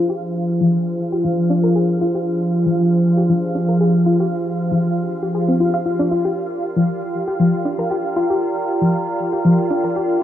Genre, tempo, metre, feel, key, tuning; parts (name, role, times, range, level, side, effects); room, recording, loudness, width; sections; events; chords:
deep house; 117 BPM; 4/4; swing 53% on 16ths; F dorian; A4 = 435 Hz
warm analog pad; sustained chords; 0.0-10.2 s; F3 to D5; -19 LUFS; equal; chorus
soft round pluck; arpeggios; 0.0-10.0 s; F3 to F5; -20 LUFS; left 2 dB; chorus, analog delay
analog string pad; texture; 0.0-10.2 s; F4 to F5; -27 LUFS; right 2 dB; ensemble chorus
warbly tape-like pad; texture; 0.3-10.2 s; F4 to Bb5; -26 LUFS; right 1 dB; chorus, built-in reverb
electronic hi-hat; drums; 0.4-10.2 s; -60 LUFS; left 2 dB
light reverb; cassette tape, low-pass filter, small room ambience; -16 LUFS; side -11 dB against mid
0.0-10.2 A section
filter sweep on analog synth pad 0.0-10.2; filter sweep on synth arpeggio sound 0.0-10.2; filter sweep 0.0-10.2
0.0 Fm69; 6.1 Gm7